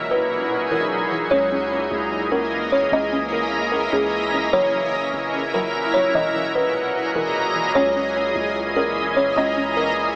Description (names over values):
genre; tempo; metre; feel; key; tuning
hip hop; 149 BPM; 4/4; half-time; C# dorian; A4 = 441 Hz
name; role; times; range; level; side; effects
buzzing kalimba; melody; 0.0-10.1 s; G#4 to D#5; -22 LUFS; equal; low-pass filter, tape echo
shimmering ambient pad; sustained chords; 0.0-10.2 s; A#2 to D#5; -23 LUFS; equal; chorus, built-in reverb
string-like resonator pluck; arpeggios; 0.0-10.2 s; E3 to C#4; -30 LUFS; equal; chorus, low-pass filter, tape echo
long sustained 808-style bass; bass; 0.0-10.2 s; E1 to C#2; -36 LUFS; equal; none
backwards swelling texture; texture; 0.0-10.2 s; E4 to A#5; -26 LUFS; equal; built-in reverb
room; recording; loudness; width
moderate spring reverb, RT60 2.2 s; echo-heavy mix, AM radio sound; -18 LUFS; side -38 dB against mid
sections
0.0-1.3 A section; 1.3-10.2 B section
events
none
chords
0.0 Emaj9#11; 1.3 C#m69; 4.5 F#7; 6.1 Emaj9#11; 7.8 C#m69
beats
0.10 0.51 0.91 | 1.31 1.71 2.12 2.52 | 2.92 3.33 3.73 4.13 | 4.53 4.93 5.34 5.74 | 6.14 6.55 6.95 7.35 | 7.75 8.16 8.56 8.96 | 9.37 9.77